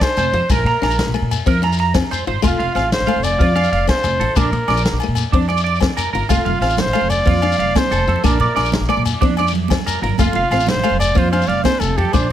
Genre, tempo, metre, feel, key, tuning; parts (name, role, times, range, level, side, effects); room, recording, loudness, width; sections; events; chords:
highlife guitar band; 124 BPM (dotted quarters); 12/8; straight; F major; A4 = 441 Hz
warm trumpet; melody; 0.0-12.3 s; F4 to D5; -20 LUFS; equal; analog delay
vintage drum kit; drums; 0.0-12.2 s; kick drum, ride cymbal, snare drum; -21 LUFS; equal
agogo bells; percussion; 0.0-12.3 s; -29 LUFS; left 12 dB
electric guitar at the edge of break-up; arpeggios; 0.2-12.3 s; D4 to Bb5; -21 LUFS; right 6 dB; analog chorus, analog delay
upright bass; bass; 0.2-12.3 s; F1 to Bb2; -20 LUFS; equal
shekere; percussion; 0.2-12.3 s; -27 LUFS; left 4 dB
picked steel-string acoustic guitar; accompaniment; 0.3-12.3 s; A3 to F4; -24 LUFS; left 8 dB
congas; percussion; 6.3-12.2 s; -26 LUFS; right 15 dB
light reverb; -14 LUFS; side -11 dB against mid
0.0-12.3 A section
0.0 F5; 0.5 Bbadd9; 2.4 F; 4.4 Bbadd9; 6.3 F; 8.2 Bbadd9; 10.2 F